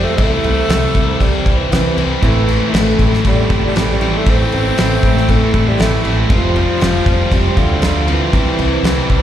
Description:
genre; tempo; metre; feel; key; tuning
classic rock; 118 BPM; 4/4; straight; A minor; A4 = 439 Hz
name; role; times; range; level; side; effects
breathy tenor saxophone; melody; 0.0-9.2 s; C3 to C4; -20 LUFS; equal; slapback echo
picked twelve-string acoustic guitar; accompaniment; 0.0-9.2 s; A2 to C5; -24 LUFS; right 2 dB; slapback echo
cranked stack guitar; riff; 0.0-9.2 s; A2 to F4; -22 LUFS; left 1 dB; overdrive, slapback echo
distorted electric guitar; riff; 0.0-9.2 s; A2 to F4; -22 LUFS; left 12 dB; overdrive, slapback echo
growling picked electric bass; bass; 0.0-9.2 s; F1 to D2; -17 LUFS; equal; overdrive
damped 70s drum kit; drums; 0.2-9.2 s; crash cymbal, kick drum, snare drum; -17 LUFS; equal; none
distorted electric guitar; riff; 2.2-9.2 s; A2 to F4; -21 LUFS; right 10 dB; distortion, slapback echo
room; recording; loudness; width
small room ambience; live gig heard through the venue's PA, recital hall reverb; -12 LUFS; side -10 dB against mid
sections
0.0-9.2 A section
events
none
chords
0.2 C; 2.2 Am; 6.3 Fsus2; 8.3 C

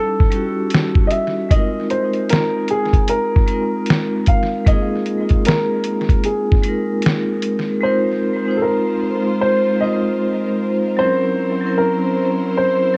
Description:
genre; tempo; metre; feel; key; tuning
lo-fi hip hop; 76 BPM; 4/4; swing 63% on 16ths; Ab major; A4 = 440 Hz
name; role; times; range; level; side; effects
warm upright piano; melody; 0.0-13.0 s; Ab4 to F5; -23 LUFS; equal; low-pass filter, tape echo
vibraphone with hard mallets; accompaniment; 0.0-13.0 s; Gb3 to C5; -22 LUFS; equal; cassette tape, low-pass filter, tape echo
lo-fi sampler-style drum kit; drums; 0.2-7.7 s; hi-hat, kick drum, snare drum; -18 LUFS; equal; vintage 12-bit sampler grit
warm studio string section; sustained chords; 7.8-13.0 s; Gb3 to C5; -28 LUFS; equal; low-pass filter
room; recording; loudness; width
light reverb, studio ambience; echo-heavy mix, cassette tape; -18 LUFS; mono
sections
0.0-7.8 A section; 7.8-13.0 B section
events
none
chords
0.0 A7#11; 1.5 Ab69; 11.0 Gb7#11

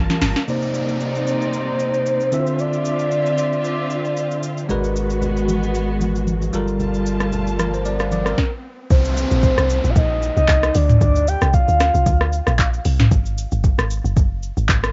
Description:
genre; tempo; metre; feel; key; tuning
amapiano; 114 BPM; 4/4; swing 55% on 16ths; unclear; A4 = 440 Hz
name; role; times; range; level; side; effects
warm studio string section; sustained chords; 0.0-8.4 s; C3 to A5; -29 LUFS; equal; sidechain pumping, cassette tape
deep log drum bass; bass; 0.0-0.3, 8.9-14.9 s; F#1 to D2; -21 LUFS; equal; none
smooth R&B drum kit; drums; 0.1-14.9 s; handclaps, hi-hat, kick drum, rim click, shaker, snare drum, toms; -21 LUFS; equal; overdrive
congas; percussion; 0.1-0.4, 4.7-8.2 s; none; -30 LUFS; equal; none
soft octave-layered synth lead; melody; 0.5-4.4, 8.9-12.8 s; C5 to G5; -24 LUFS; equal; chorus, phaser, analog delay
bell-like tine electric piano; accompaniment; 0.5-8.5 s; C3 to F5; -26 LUFS; equal; cassette tape
downlifter and riser; sound effects; 0.5-13.1 s; none; -36 LUFS; equal; none
warm sub bass; bass; 4.7-8.3 s; G1 to Ab1; -26 LUFS; equal; none
room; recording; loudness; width
little or no reverb; home recording on cassette, nothing above 7.6 kHz; -19 LUFS; mono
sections
0.5-8.9 A section; 8.9-14.9 B section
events
drum fill 0.0-0.5; stop 8.4-8.9; drop 8.9-14.9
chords
0.5 Cm9; 2.3 Dm9; 4.7 Abm9; 6.5 Gm9; 8.9 Bbsus24; 10.7 Dm7; 13.1 F#sus2

